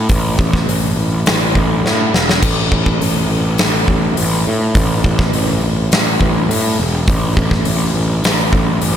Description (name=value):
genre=hard rock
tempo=103 BPM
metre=4/4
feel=straight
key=unclear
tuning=A4 = 441 Hz
part: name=fuzz picked electric bass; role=bass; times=0.0-9.0 s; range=E1 to A2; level=-16 LUFS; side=equal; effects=overdrive
part: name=huge arena drum kit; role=drums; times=0.1-9.0 s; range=crash cymbal, hi-hat, kick drum, snare drum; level=-15 LUFS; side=equal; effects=none
room=little or no reverb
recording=none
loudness=-12 LUFS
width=side -9 dB against mid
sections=0.0-9.0 A section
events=drum fill 1.8-2.4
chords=none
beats=| 0.10 0.68 1.26 1.84 | 2.42 3.01 3.59 4.17 | 4.75 5.33 5.92 6.50 | 7.08 7.66 8.24 8.82